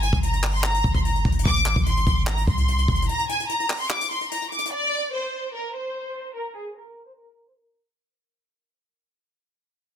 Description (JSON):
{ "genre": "hip hop, trap", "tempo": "147 BPM", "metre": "4/4", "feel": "half-time", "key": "unclear", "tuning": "A4 = 439 Hz", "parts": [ { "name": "rich studio violin section", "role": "melody", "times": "0.0-7.8 s", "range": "Ab4 to D6", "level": "-25 LUFS", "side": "left 1 dB", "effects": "none" }, { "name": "clean 808-style bass", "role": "bass", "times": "0.0-3.1 s", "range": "G1 to C2", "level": "-23 LUFS", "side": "equal", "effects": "none" }, { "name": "jazz brush drum kit", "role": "drums", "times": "0.0-4.7 s", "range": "handclaps, hi-hat, kick drum", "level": "-24 LUFS", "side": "equal", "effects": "none" } ], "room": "studio ambience", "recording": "dense, heavily limited modern master, low-pass filter", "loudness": "-21 LUFS", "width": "side -9 dB against mid", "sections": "0.0-4.7 A section; 4.7-8.0 B section", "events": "break 3.1-4.7; fade-out 4.7-8.0; filter sweep 4.7-8.0", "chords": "0.0 Gm; 1.5 Ab; 3.1 N.C." }